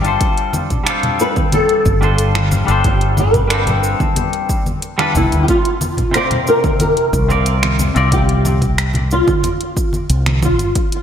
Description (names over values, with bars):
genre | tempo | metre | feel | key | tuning
sunset chillout | 91 BPM | 4/4 | straight | unclear | A4 = 439 Hz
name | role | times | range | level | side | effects
semi-hollow electric guitar | accompaniment | 0.0-8.5 s | C3 to D5 | -19 LUFS | moving between left 6 dB and right 2 dB | auto-pan, tape echo
mellow fretless electric bass | bass | 0.0-10.7 s | G1 to D2 | -16 LUFS | equal | none
deep house drum kit | drums | 0.0-11.0 s | cabasa, congas, finger snaps, hi-hat | -22 LUFS | right 3 dB | overdrive, small room ambience
electronic kick drum | drums | 0.2-10.9 s | none | -19 LUFS | equal | overdrive, small room ambience
congas | percussion | 0.5-10.6 s | none | -23 LUFS | left 1 dB | none
flamenco guitar | melody | 1.2-10.7 s | E4 to C5 | -18 LUFS | equal | ensemble chorus, tape echo
room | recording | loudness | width
moderate lush hall reverb, RT60 1.6 s | dreamy mix soaked in reverb | -13 LUFS | side -8 dB against mid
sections
0.0-11.0 A section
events
none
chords
0.2 G9sus4; 5.5 C9sus4